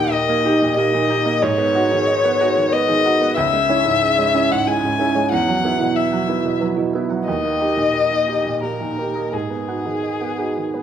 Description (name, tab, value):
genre	neoclassical piano and strings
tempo	84-94 BPM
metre	3/4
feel	rubato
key	G# minor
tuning	A4 = 440 Hz
part	muted violin	melody	0.0-10.8 s	G#4 to G#5	-19 LUFS	left 4 dB	none
part	clear baby grand piano	accompaniment	0.0-10.8 s	C#2 to G4	-21 LUFS	right 4 dB	none
part	harp-like synth pluck	arpeggios	0.0-10.8 s	C#4 to F#5	-24 LUFS	right 2 dB	chorus
room	wet recital hall reverb, RT60 1.5 s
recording	none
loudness	-16 LUFS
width	side -9 dB against mid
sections	0.0-10.8 A section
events	none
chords	0.0 D#; 1.4 G#m7; 3.4 C#m; 5.3 Esus2; 7.3 D#; 9.3 G#m7